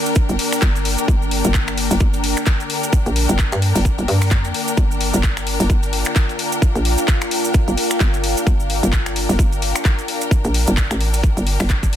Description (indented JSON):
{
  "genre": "bass house",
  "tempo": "130 BPM",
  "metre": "4/4",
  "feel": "swing 58% on 16ths",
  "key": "G minor",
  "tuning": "A4 = 436 Hz",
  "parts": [
    { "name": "deep dark ambient pad", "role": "sustained chords", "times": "0.0-12.0 s", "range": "D4 to G5", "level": "-26 LUFS", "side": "left 1 dB", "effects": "chorus, built-in reverb, sidechain pumping" },
    { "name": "bright studio string section", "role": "texture", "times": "0.0-12.0 s", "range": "D4 to G5", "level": "-25 LUFS", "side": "left 3 dB", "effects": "sidechain pumping" },
    { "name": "garage drum kit", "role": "drums", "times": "0.1-12.0 s", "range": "finger snaps, handclaps, hi-hat", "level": "-24 LUFS", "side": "left 2 dB", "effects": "none" },
    { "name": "maracas", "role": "percussion", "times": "0.1-11.9 s", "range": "none", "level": "-29 LUFS", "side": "right 6 dB", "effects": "none" },
    { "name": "electronic kick drum", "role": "drums", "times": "0.2-11.9 s", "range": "none", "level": "-16 LUFS", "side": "equal", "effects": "none" },
    { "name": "hollow knocking FM bass", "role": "bass", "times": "0.3-12.0 s", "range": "G1 to G2", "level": "-19 LUFS", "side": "equal", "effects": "tube saturation, sidechain pumping" }
  ],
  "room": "digital ambience",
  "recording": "dense, heavily limited modern master",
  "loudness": "-15 LUFS",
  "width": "side -11 dB against mid",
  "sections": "0.0-12.0 A section",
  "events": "drum fill 11.7",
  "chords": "0.0 Gm"
}